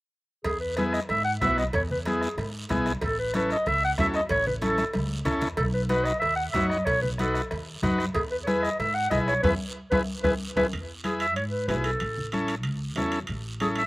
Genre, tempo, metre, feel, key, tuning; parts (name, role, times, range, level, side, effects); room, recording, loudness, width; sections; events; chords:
latin, cumbia; 187 BPM; 4/4; straight; E major; A4 = 445 Hz
mellow clarinet; melody; 0.4-13.9 s; G#4 to F#5; -26 LUFS; equal
bombo; percussion; 0.4-10.6 s; -35 LUFS; equal
cowbell and timbales; percussion; 0.4-13.9 s; -36 LUFS; right 3 dB; slapback echo
upright bass; bass; 0.5-13.9 s; A1 to G#2; -32 LUFS; equal
congas; percussion; 0.5-13.8 s; -32 LUFS; left 1 dB
guiro; percussion; 0.5-13.9 s; -43 LUFS; right 2 dB
overdriven combo organ; accompaniment; 0.8-13.8 s; B3 to C#5; -29 LUFS; left 1 dB
little or no reverb; recorded outdoors, with no room sound; -24 LUFS; side -20 dB against mid
0.5-10.7 A section; 10.7-13.9 B section
drum fill 4.6-5.6, 9.4-10.7; band accent 9.4-10.7
0.5 E; 3.0 A; 5.6 B; 8.2 E; 12.0 A